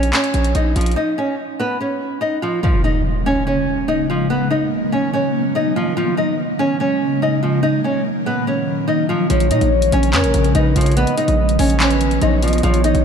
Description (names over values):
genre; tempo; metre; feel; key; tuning
hip hop, trap; 144 BPM; 4/4; half-time; Bb phrygian; A4 = 439 Hz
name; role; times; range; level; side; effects
nylon-string guitar; melody; 0.0-13.0 s; F3 to Eb5; -19 LUFS; right 1 dB; diffuse ambient delay
hard-hitting 808-style bass; bass; 0.0-1.0, 9.3-13.0 s; Bb1 to Bb2; -17 LUFS; equal; none
trap drum kit; drums; 0.0-1.0, 9.3-13.0 s; handclaps, hi-hat; -23 LUFS; left 1 dB; none
ethereal airy pad; sustained chords; 3.0-13.0 s; Bb2 to B3; -20 LUFS; equal; ensemble chorus, built-in reverb, tremolo
impact; sound effects; 2.6-4.3 s; none; -21 LUFS; equal; none
gliding portamento lead; second line; 9.3-13.0 s; Bb4 to D#5; -22 LUFS; left 2 dB; chorus, phaser, diffuse ambient delay
room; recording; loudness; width
moderate church reverb, RT60 3.6 s; dreamy mix soaked in reverb; -15 LUFS; side -7 dB against mid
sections
0.0-2.6 A section; 2.6-13.0 B section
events
break 1.0-2.6; impact 2.6-4.3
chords
0.0 Bbm; 1.0 Dbadd9; 2.6 Bbm7; 4.3 B; 6.0 Bbm7; 7.6 Ebm/Bb; 9.3 Bbm7; 11.0 B/Bb